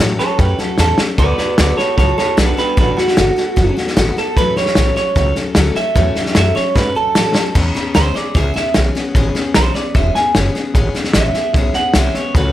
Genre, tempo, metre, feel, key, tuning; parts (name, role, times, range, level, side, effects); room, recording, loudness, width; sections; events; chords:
rockabilly; 150 BPM; 4/4; straight; A4 = 440 Hz
picked steel-string acoustic guitar; accompaniment; 0.0-12.5 s; A2 to A4; -21 LUFS; left 4 dB
upright bass; bass; 0.0-12.5 s; E1 to A2; -17 LUFS; equal
electric guitar through a small old amp; melody; 0.2-12.5 s; D4 to G#5; -18 LUFS; right 2 dB; analog delay
vintage drum kit; drums; 0.2-12.4 s; hi-hat, kick drum, snare drum, splash cymbal; -16 LUFS; equal
light reverb; -12 LUFS; side -13 dB against mid
0.0-12.5 A section
clean electric guitar solo 0.0-12.5; drum fill 0.8-1.2, 6.8-7.6
0.0 A6; 1.2 D6; 4.4 A6; 7.6 E6